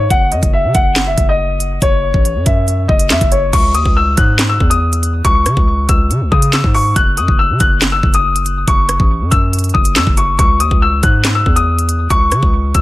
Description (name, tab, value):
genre	hip hop, drill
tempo	140 BPM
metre	4/4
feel	half-time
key	C# minor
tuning	A4 = 440 Hz
part	dark baby grand piano	melody	0.0-12.8 s	C#5 to F#6	-15 LUFS	left 2 dB	low-pass filter, tape echo
part	hard-hitting 808-style bass	bass	0.0-12.8 s	F#1 to C#3	-16 LUFS	equal	none
part	drill drum kit	drums	0.1-12.8 s	crash cymbal, handclaps, hi-hat, kick drum, rim click, snare drum	-14 LUFS	equal	none
room	digital ambience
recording	lossy compression artefacts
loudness	-10 LUFS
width	side -16 dB against mid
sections	0.0-3.5 A section; 3.5-12.8 B section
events	none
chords	0.1 F#7(no3); 3.5 C#m; 7.0 F#7(no3); 10.4 C#m